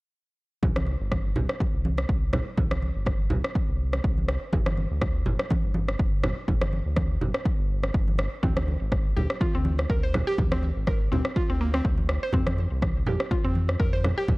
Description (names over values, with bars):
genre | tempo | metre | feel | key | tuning
afro house | 123 BPM | 4/4 | swing 55% on 16ths | unclear | A4 = 440 Hz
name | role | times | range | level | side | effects
round analog bass | bass | 0.6-14.4 s | G1 to F2 | -28 LUFS | equal | sidechain pumping
electronic kick drum | drums | 0.6-14.4 s | none | -26 LUFS | equal | overdrive
congas | percussion | 0.6-14.4 s | none | -30 LUFS | right 1 dB | none
electronic rim click | drums | 0.8-14.2 s | none | -32 LUFS | equal | overdrive
mallet-like synth pluck | arpeggios | 8.4-14.2 s | Bb3 to C5 | -31 LUFS | equal | chorus, sidechain pumping, tape echo
room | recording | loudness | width
digital ambience | dry, gritty hardware recording, cassette tape | -23 LUFS | side -23 dB against mid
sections
0.6-14.4 A section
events
none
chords
0.6 C5; 4.5 G5; 8.4 D7(b5, no3); 12.3 F5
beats
| 0.63 1.12 1.61 2.09 | 2.58 3.07 3.56 4.04 | 4.53 5.02 5.51 6.00 | 6.48 6.97 7.46 7.95 | 8.44 8.92 9.41 9.90 | 10.39 10.87 11.36 11.85 | 12.34 12.82 13.31 13.80 | 14.29